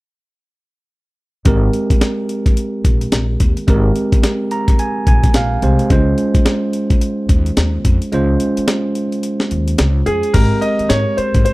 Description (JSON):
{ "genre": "R&B, new jack swing", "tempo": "108 BPM", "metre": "4/4", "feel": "swing 60% on 16ths", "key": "Ab major", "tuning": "A4 = 441 Hz", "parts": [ { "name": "tine electric piano", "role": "accompaniment", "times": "1.4-11.5 s", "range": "Ab3 to Bb5", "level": "-18 LUFS", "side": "right 1 dB", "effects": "none" }, { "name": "upright bass", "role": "bass", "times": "1.5-11.4 s", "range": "Ab1 to Ab2", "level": "-17 LUFS", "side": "equal", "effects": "none" }, { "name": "breakbeat sampler-style drum kit", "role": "drums", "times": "1.5-11.5 s", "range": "crash cymbal, hi-hat, kick drum, snare drum", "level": "-14 LUFS", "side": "equal", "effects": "none" }, { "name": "warm concert grand piano", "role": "melody", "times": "10.1-11.5 s", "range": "Ab4 to Eb5", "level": "-17 LUFS", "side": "equal", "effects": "none" } ], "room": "digital ambience", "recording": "dry, close 1970s-style studio recording", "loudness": "-13 LUFS", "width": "side -20 dB against mid", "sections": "1.5-10.3 A section; 10.3-11.5 B section", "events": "tine electric piano fill 4.2-5.9; kick muted 8.1-10.3", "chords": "1.5 Abmaj9; 5.9 Dbmaj7; 10.3 Abmaj9", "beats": "| 1.46 2.01 2.57 3.12 | 3.68 4.23 4.79 5.34 | 5.90 6.46 7.01 7.57 | 8.12 8.68 9.23 9.79 | 10.35 10.90 11.46" }